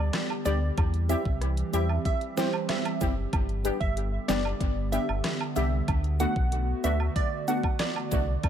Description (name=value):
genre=dancehall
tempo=94 BPM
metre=4/4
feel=straight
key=G major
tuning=A4 = 444 Hz
part: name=hollow soft pad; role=sustained chords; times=0.0-8.5 s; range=D3 to G4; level=-35 LUFS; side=right 2 dB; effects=chorus, sidechain pumping
part: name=sub bass with octave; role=bass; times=0.0-8.5 s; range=F#1 to E2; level=-28 LUFS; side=equal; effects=none
part: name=pop drum kit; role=drums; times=0.1-8.5 s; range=handclaps, hi-hat, kick drum, rim click, snare drum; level=-30 LUFS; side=equal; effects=overdrive, analog delay
part: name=woodblock and cabasa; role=percussion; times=0.3-8.5 s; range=none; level=-38 LUFS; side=right 7 dB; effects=none
part: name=glassy wavetable pluck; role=melody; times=0.5-8.2 s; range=C5 to F#5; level=-33 LUFS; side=right 3 dB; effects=chorus, analog delay
part: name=synth brass stab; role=accompaniment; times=0.5-8.2 s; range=G3 to G4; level=-32 LUFS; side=left 2 dB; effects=chorus, analog delay
room=digital ambience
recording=echo-heavy mix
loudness=-25 LUFS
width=side -9 dB against mid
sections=0.0-8.5 A section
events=none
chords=0.0 G; 0.8 C; 3.3 G; 5.9 D6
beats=0.14 | 0.78 1.41 2.05 2.69 | 3.33 3.97 4.61 5.24 | 5.88 6.52 7.16 7.80 | 8.44